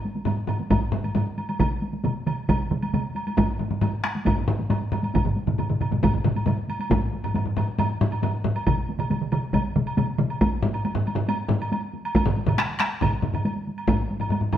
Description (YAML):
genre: japanese traditional, taiko drum ensemble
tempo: 137 BPM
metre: 4/4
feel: straight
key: none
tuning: none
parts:
  - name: taiko ensemble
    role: percussion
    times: 0.0-14.6 s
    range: none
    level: -29 LUFS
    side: equal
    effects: none
  - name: taiko ensemble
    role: percussion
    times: 0.3-14.6 s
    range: none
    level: -25 LUFS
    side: left 1 dB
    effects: none
  - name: woodblock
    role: percussion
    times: 0.3-14.6 s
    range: none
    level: -33 LUFS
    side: right 3 dB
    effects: none
  - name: solo taiko drums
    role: percussion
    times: 0.7-14.0 s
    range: none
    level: -24 LUFS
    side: equal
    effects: none
  - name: taiko ensemble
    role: percussion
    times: 1.6-13.4 s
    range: none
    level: -26 LUFS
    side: right 1 dB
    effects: none
room: wet stone room reverb, RT60 1.1 s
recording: band playing live in one room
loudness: -22 LUFS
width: side -10 dB against mid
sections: 0.0-6.9 A section; 6.9-14.6 B section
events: speeding up 0.0-14.6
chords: none